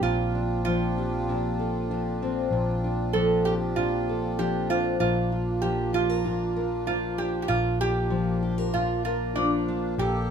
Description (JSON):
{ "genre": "acoustic folk duo or small band", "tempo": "96 BPM", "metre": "4/4", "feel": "straight", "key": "Bb major", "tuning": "A4 = 441 Hz", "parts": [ { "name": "metal-body resonator slide guitar", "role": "second line", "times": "0.0-10.3 s", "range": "D4 to A4", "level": "-28 LUFS", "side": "right 4 dB", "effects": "none" }, { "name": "fingerpicked steel-string acoustic guitar", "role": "accompaniment", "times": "0.0-10.3 s", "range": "Bb2 to Bb4", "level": "-29 LUFS", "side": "left 3 dB", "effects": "none" }, { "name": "hand-pumped harmonium", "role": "sustained chords", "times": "0.0-10.3 s", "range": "Bb3 to A4", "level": "-34 LUFS", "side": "right 1 dB", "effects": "none" }, { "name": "picked electric bass", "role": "bass", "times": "0.0-10.3 s", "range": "Bb1", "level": "-30 LUFS", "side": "equal", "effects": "none" } ], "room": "moderate studio reverb, RT60 0.5 s", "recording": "minimal, uncompressed stereo recording", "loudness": "-24 LUFS", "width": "side -7 dB against mid", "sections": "0.0-10.3 A section", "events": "none", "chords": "0.0 Dm7/Bb; 5.0 Bb", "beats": "| 0.02 0.64 1.26 1.89 | 2.51 3.13 3.75 4.38 | 5.00 5.62 6.25 6.87 | 7.49 8.12 8.74 9.36 | 9.98" }